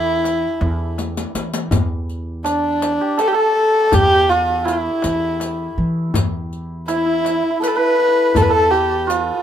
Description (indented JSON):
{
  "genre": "Persian modal ensemble",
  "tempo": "81 BPM",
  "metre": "3/4",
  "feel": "straight",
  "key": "E dastgah shur",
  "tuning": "A4 = 439 Hz",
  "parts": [
    { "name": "warm kamancheh", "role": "melody", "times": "0.0-9.4 s", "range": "D4 to B4", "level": "-17 LUFS", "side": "equal", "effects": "none" },
    { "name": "santur", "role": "second line", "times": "0.0-9.4 s", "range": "D4 to B4", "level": "-22 LUFS", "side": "right 2 dB", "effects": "none" },
    { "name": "upright bass", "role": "bass", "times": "0.0-9.3 s", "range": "E2 to E3", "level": "-23 LUFS", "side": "equal", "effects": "none" },
    { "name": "tombak", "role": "percussion", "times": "0.2-9.3 s", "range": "none", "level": "-22 LUFS", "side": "left 2 dB", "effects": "none" },
    { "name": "riq", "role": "percussion", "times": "0.3-9.3 s", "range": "none", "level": "-27 LUFS", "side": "left 4 dB", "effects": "none" }
  ],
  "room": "light reverb",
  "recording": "minimal, uncompressed stereo recording",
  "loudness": "-15 LUFS",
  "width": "side -10 dB against mid",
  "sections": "0.0-1.7 A section; 1.7-9.4 A section",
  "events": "drum fill 1.0-1.7",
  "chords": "none",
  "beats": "0.25 0.98 | 1.72 2.46 3.20 | 3.93 4.67 5.41 | 6.15 6.88 7.62 | 8.36 9.10"
}